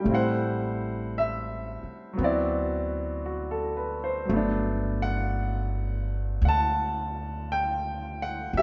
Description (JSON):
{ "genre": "jazz ballad", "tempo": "57 BPM", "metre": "4/4", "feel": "swing 67% on 8ths", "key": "unclear", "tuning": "A4 = 440 Hz", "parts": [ { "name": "clear grand piano", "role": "accompaniment", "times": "0.0-8.6 s", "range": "F#3 to A5", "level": "-30 LUFS", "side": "equal", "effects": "none" }, { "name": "upright bass", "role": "bass", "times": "0.1-8.6 s", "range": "G1 to E2", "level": "-33 LUFS", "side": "equal", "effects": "none" } ], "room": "wet echo chamber reverb, RT60 2.1 s", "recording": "heard from further back in the room, nothing above 7.6 kHz", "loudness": "-28 LUFS", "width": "mono", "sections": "0.0-8.6 A section", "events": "none", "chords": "0.1 Am7; 2.2 D13; 4.3 Gmaj7" }